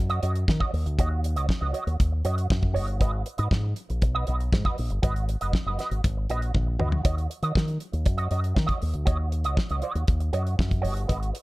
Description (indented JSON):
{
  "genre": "disco",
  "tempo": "119 BPM",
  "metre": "4/4",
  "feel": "straight",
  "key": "Eb minor",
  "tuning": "A4 = 440 Hz",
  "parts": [
    { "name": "fingered electric bass with an envelope filter", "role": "bass", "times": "0.0-11.3 s", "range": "Gb1 to Eb3", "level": "-26 LUFS", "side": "equal", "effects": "none" },
    { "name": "electric guitar with an envelope filter", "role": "accompaniment", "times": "0.1-11.4 s", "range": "Gb4 to Eb5", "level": "-31 LUFS", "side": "right 4 dB", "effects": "wah" },
    { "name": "damped 70s drum kit", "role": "drums", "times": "0.1-11.4 s", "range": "hi-hat, kick drum, snare drum, toms", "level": "-25 LUFS", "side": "equal", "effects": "none" }
  ],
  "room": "small room reverb",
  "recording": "none",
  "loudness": "-23 LUFS",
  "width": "side -20 dB against mid",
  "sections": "0.0-11.4 A section",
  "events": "drum fill 6.5-7.0",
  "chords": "0.0 Ebm7; 3.0 Abm7; 7.0 Ebm7",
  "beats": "0.47 | 0.98 1.49 1.99 2.50 | 3.00 3.51 4.02 4.52 | 5.03 5.53 6.04 6.54 | 7.05 7.56 8.06 8.57 | 9.07 9.58 10.08 10.59 | 11.09"
}